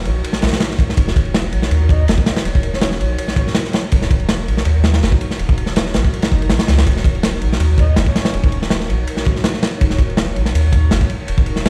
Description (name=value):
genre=drum and bass, jungle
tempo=163 BPM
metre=4/4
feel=swing 53% on 16ths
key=Eb minor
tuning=A4 = 440 Hz
part: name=airy breathy pad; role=sustained chords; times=0.0-11.7 s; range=Eb4 to Db5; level=-31 LUFS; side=equal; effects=chorus, phaser
part: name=soft dub sub bass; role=bass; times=0.0-11.7 s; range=Eb1 to Eb2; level=-20 LUFS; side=equal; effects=none
part: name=crunchy breakbeat drum kit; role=drums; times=0.1-11.7 s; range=kick drum, ride cymbal, snare drum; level=-18 LUFS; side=equal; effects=none
part: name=breathy flute-like synth lead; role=melody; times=1.9-3.5, 7.8-8.6 s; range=Db5 to Eb5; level=-32 LUFS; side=equal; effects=lush chorus, dub echo
part: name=swell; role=sound effects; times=6.3-6.9 s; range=none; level=-37 LUFS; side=equal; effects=none
room=small room ambience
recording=played on a big sound system in a bare room, stone room reverb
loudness=-16 LUFS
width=mono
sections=0.0-11.7 A section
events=none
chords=0.0 Ebm7